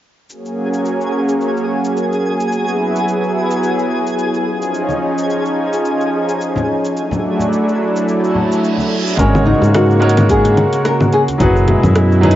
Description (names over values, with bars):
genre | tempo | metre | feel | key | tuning
sunset chillout | 108 BPM | 4/4 | swing 56% on 16ths | unclear | A4 = 440 Hz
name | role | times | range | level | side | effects
lush unison pad | sustained chords | 0.3-12.4 s | Cb3 to Ab4 | -16 LUFS | equal | chorus, vintage 12-bit sampler grit
deep house drum kit | drums | 0.3-12.4 s | cabasa, congas, hi-hat, rim click | -20 LUFS | left 1 dB | overdrive
twinkling granular texture | texture | 0.7-9.2 s | Ab4 to Ab5 | -26 LUFS | equal | built-in reverb
congas and bongos | percussion | 4.9-12.2 s | none | -24 LUFS | left 2 dB | none
reverse cymbal | sound effects | 8.3-9.2 s | none | -24 LUFS | right 4 dB | none
nylon-string guitar | melody | 9.2-12.4 s | Db4 to Bb4 | -16 LUFS | left 1 dB | cassette tape, analog delay
bright grand piano | accompaniment | 9.2-12.4 s | Gb3 to Db5 | -18 LUFS | right 2 dB | auto-pan
fingered electric bass | bass | 9.2-12.4 s | Gb1 to Ab2 | -13 LUFS | equal | tube saturation
electronic kick drum | drums | 9.2-11.5 s | none | -19 LUFS | equal | overdrive
room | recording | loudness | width
wet small room reverb, RT60 0.5 s | home recording on cassette, nothing above 7.6 kHz | -13 LUFS | side -13 dB against mid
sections
0.3-9.2 A section; 9.2-12.4 B section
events
reverse cymbal 8.3-9.2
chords
0.3 Ab9sus4; 2.5 Gb9sus4; 4.5 Eb9sus4; 7.0 E9sus4; 9.2 Ab9sus4; 11.4 Gb9sus4